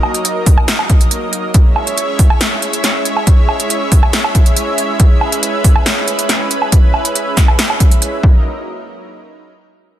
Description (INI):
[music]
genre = heavy wobble dubstep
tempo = 139 BPM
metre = 4/4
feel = half-time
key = unclear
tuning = A4 = 441 Hz
[part]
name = lush unison pad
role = sustained chords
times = 0.0-8.4 s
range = Gb3 to Fb5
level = -19 LUFS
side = right 1 dB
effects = chorus, sidechain pumping
[part]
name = big-room dance drum kit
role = drums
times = 0.0-8.1 s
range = hi-hat, snare drum, woodblock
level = -16 LUFS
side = right 1 dB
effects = none
[part]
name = electronic kick drum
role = drums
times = 0.5-8.3 s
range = none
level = -9 LUFS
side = equal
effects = none
[sound]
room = light reverb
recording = dense, heavily limited modern master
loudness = -10 LUFS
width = side -12 dB against mid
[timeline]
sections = 0.0-8.4 A section; 8.4-10.0 B section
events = none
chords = 0.0 Ebm; 1.5 Dbm; 8.2 Ebm; 8.4 N.C.